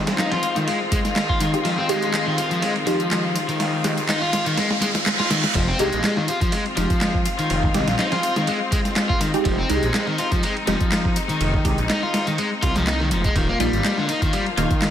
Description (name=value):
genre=breakbeat, breaks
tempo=123 BPM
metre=4/4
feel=swing 54% on 16ths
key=F minor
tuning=A4 = 440 Hz
part: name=clear studio string section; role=sustained chords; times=0.0-14.9 s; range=Eb3 to F4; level=-26 LUFS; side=left 2 dB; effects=sidechain pumping, low-pass filter
part: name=overdriven semi-hollow guitar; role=riff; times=0.0-14.9 s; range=D3 to F4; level=-24 LUFS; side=left 2 dB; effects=low-pass filter, ping-pong delay
part: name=filtered dub chord stab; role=stabs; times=0.0-14.7 s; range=Ab3 to G4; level=-27 LUFS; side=right 2 dB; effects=phaser, vintage 12-bit sampler grit, ping-pong delay
part: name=phased detuned saw bass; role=bass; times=0.0-14.7 s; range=Eb1 to C2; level=-26 LUFS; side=equal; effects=phaser, high-pass filter
part: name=riser and reverse cymbal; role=sound effects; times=2.4-5.6 s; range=none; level=-30 LUFS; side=right 2 dB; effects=none
part: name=dusty soul sampler-style drum kit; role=drums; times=0.1-14.9 s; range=crash cymbal, kick drum, ride cymbal, snare drum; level=-24 LUFS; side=right 1 dB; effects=overdrive
part: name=house drum kit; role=drums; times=0.1-14.9 s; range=handclaps, hi-hat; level=-30 LUFS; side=equal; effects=none
room=light reverb, digital ambience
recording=none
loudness=-18 LUFS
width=side -10 dB against mid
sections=0.0-5.6 A section; 5.6-14.9 B section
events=build-up 0.0-5.6; filter sweep on synth stab 0.0-5.6; drum fill 1.6-5.6; riser 2.4-5.6; reverse cymbal 4.6-5.6; drop 5.6-14.9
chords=0.0 Fm7; 13.4 Ebsus2